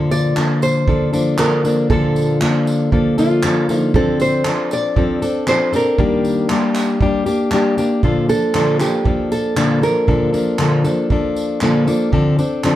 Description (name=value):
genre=acoustic pop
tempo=117 BPM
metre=4/4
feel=swing 60% on 16ths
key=Bb major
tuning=A4 = 440 Hz
part: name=fingerpicked plugged-in steel-string acoustic guitar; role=accompaniment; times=0.0-12.8 s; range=Bb2 to A4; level=-16 LUFS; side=left 1 dB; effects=none
part: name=nylon-string guitar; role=melody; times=0.1-11.3 s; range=F4 to D5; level=-20 LUFS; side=right 1 dB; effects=none
part: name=unplugged drum kit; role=drums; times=0.1-12.8 s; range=handclaps, kick drum, tambourine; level=-22 LUFS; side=right 2 dB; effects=none
room=moderate studio reverb, RT60 0.5 s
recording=none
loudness=-14 LUFS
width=side -13 dB against mid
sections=0.0-8.0 A section; 8.0-12.8 B section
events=none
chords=0.0 Bbmaj7; 3.9 Dm7; 6.0 Ebmaj7; 8.0 Bbmaj7; 12.1 Dm7